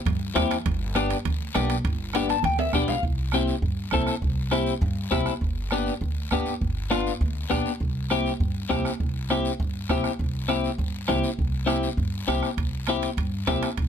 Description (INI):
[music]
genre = latin, cumbia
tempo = 201 BPM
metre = 4/4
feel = straight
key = C major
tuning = A4 = 440 Hz
[part]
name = upright bass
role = bass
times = 0.1-13.9 s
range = G1 to G2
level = -29 LUFS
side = equal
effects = none
[part]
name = bombo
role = percussion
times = 0.1-13.9 s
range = none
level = -29 LUFS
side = right 2 dB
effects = none
[part]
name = congas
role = percussion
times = 0.1-13.9 s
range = none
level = -34 LUFS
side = right 3 dB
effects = none
[part]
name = guiro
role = percussion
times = 0.1-13.9 s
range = none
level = -39 LUFS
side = left 6 dB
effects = none
[part]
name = timbales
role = percussion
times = 0.1-3.0, 12.6-13.9 s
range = none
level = -34 LUFS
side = right 9 dB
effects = none
[part]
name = clean electric guitar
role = accompaniment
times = 0.4-13.7 s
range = B3 to A5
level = -25 LUFS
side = left 4 dB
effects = wide subtle chorus
[sound]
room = light reverb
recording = close, detailed microphones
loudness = -23 LUFS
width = side -8 dB against mid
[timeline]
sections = 0.0-3.0 A section; 3.0-13.9 B section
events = clean electric guitar fill 2.1-3.0; drum fill 2.6-3.0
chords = 0.0 C; 0.7 G; 3.0 C; 5.4 G; 7.8 C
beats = 0.06 0.35 | 0.65 0.95 1.25 1.54 | 1.84 2.14 2.44 2.73 | 3.03 3.33 3.63 3.93 | 4.22 4.52 4.82 5.12 | 5.42 5.71 6.01 6.31 | 6.61 6.91 7.21 7.50 | 7.80 8.10 8.40 8.70 | 9.00 9.30 9.59 9.89 | 10.19 10.49 10.79 11.09 | 11.38 11.68 11.98 12.28 | 12.58 12.88 13.18 13.47 | 13.77